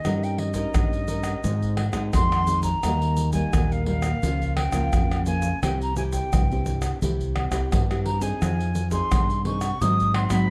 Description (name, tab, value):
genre	samba and choro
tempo	86 BPM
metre	4/4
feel	straight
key	unclear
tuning	A4 = 440 Hz
part	silver concert flute	melody	0.0-10.5 s	Eb5 to Eb6	-31 LUFS	equal	none
part	egg shaker, surdo, pandeiro and tamborim	percussion	0.0-10.5 s	none	-29 LUFS	equal	none
part	nylon-string guitar	accompaniment	0.1-10.5 s	G2 to Bb4	-31 LUFS	equal	none
part	fingered electric bass	bass	0.1-10.5 s	C2 to Ab2	-28 LUFS	equal	none
room	light reverb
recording	dark, warm production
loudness	-24 LUFS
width	mono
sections	0.0-10.5 A section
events	none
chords	0.1 Eb7/G; 1.4 Ab; 2.8 Eb; 4.2 Bbm/Db; 5.6 C; 8.4 Fm7; 9.8 Ab7